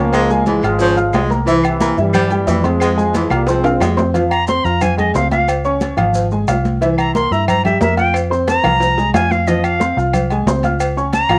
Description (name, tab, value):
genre	latin, salsa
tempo	180 BPM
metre	4/4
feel	straight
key	F harmonic minor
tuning	A4 = 441 Hz
part	bright trombone section	melody	0.0-3.8 s	C3 to C4	-22 LUFS	equal	cassette tape
part	dark baby grand piano	accompaniment	0.0-11.4 s	E3 to F6	-21 LUFS	equal	cassette tape
part	vintage muted fingered electric bass	bass	0.0-11.4 s	Ab1 to G2	-22 LUFS	equal	none
part	breathy baritone saxophone	second line	0.1-4.0 s	E3 to Ab3	-22 LUFS	equal	cassette tape
part	agogo bells and timbales	percussion	0.1-11.4 s	none	-26 LUFS	equal	none
part	claves	percussion	0.1-11.4 s	none	-34 LUFS	equal	none
part	congas	percussion	0.1-11.4 s	none	-25 LUFS	equal	none
part	cowbell and bongos	percussion	0.1-11.4 s	none	-28 LUFS	equal	none
part	maracas	percussion	0.1-11.4 s	none	-40 LUFS	equal	none
part	bright reedy silver concert flute	melody	4.3-11.4 s	Eb5 to C6	-19 LUFS	equal	cassette tape
room	moderate studio reverb, RT60 0.6 s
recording	home recording on cassette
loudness	-15 LUFS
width	mono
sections	0.0-4.2 A section; 4.2-11.4 B section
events	drum fill 3.5-4.2, 8.5-9.5; flute solo 4.2-11.4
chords	0.1 Db; 1.5 C7; 2.8 Fm; 5.5 Db; 6.8 C7; 8.2 Fm; 10.8 Db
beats	| 0.13 0.47 0.80 1.14 | 1.47 1.81 2.14 2.48 | 2.81 3.15 3.48 3.82 | 4.15 4.49 4.82 5.15 | 5.49 5.82 6.16 6.49 | 6.82 7.15 7.49 7.82 | 8.15 8.48 8.81 9.15 | 9.48 9.81 10.14 10.47 | 10.80 11.13